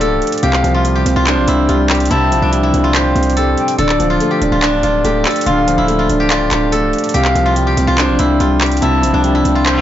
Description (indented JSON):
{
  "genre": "hip hop, trap",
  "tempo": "143 BPM",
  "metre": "4/4",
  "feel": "half-time",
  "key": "unclear",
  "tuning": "A4 = 441 Hz",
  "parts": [
    { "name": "steel-string zither", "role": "melody", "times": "0.0-9.8 s", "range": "D4 to A4", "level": "-16 LUFS", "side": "left 2 dB", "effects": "tape echo" },
    { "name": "dark grand piano", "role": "accompaniment", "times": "0.0-9.8 s", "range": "C3 to D5", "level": "-16 LUFS", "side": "right 2 dB", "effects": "none" },
    { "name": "distorted 808-style bass", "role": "bass", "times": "0.0-9.8 s", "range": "C1 to C2", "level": "-17 LUFS", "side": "equal", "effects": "distortion" },
    { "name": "trap drum kit", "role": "drums", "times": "0.0-9.8 s", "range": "handclaps, hi-hat", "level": "-20 LUFS", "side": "equal", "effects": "soft clipping on snare" },
    { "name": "silver concert flute", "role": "second line", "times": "0.4-9.2 s", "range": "D5 to A5", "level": "-22 LUFS", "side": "left 4 dB", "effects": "tape echo" },
    { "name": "reverse cymbal", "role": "sound effects", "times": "9.7-9.8 s", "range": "none", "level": "-19 LUFS", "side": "left 1 dB", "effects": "none" }
  ],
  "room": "small room reverb",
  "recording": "blown-out, overdriven recording, overdrive, nothing above 7.7 kHz",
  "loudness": "-11 LUFS",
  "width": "side -11 dB against mid",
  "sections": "0.0-9.8 A section",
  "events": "reverse cymbal 9.7",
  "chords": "0.4 Csus4; 3.8 Dm; 7.1 Csus4"
}